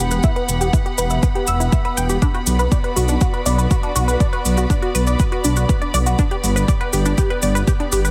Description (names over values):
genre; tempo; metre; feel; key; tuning
melodic techno; 121 BPM; 4/4; straight; unclear; A4 = 439 Hz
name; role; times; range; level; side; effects
tight sequenced synth; arpeggios; 0.0-8.1 s; D4 to E6; -25 LUFS; equal; chorus, phaser, sidechain pumping, tape echo
swelling detuned saw bass; bass; 0.0-8.1 s; E1 to B1; -21 LUFS; equal; sidechain pumping
rich studio string section; texture; 0.0-8.1 s; B3 to B5; -28 LUFS; equal; sidechain pumping
electronic hi-hat; drums; 0.1-8.1 s; none; -34 LUFS; equal; none
cabasa; percussion; 0.1-8.1 s; none; -29 LUFS; equal; none
electronic kick drum; drums; 0.2-7.8 s; none; -20 LUFS; equal; none
room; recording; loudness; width
light reverb; heavily compressed radio sound; -18 LUFS; mono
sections
0.0-8.1 A section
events
none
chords
0.0 Em; 2.2 Bm; 6.2 G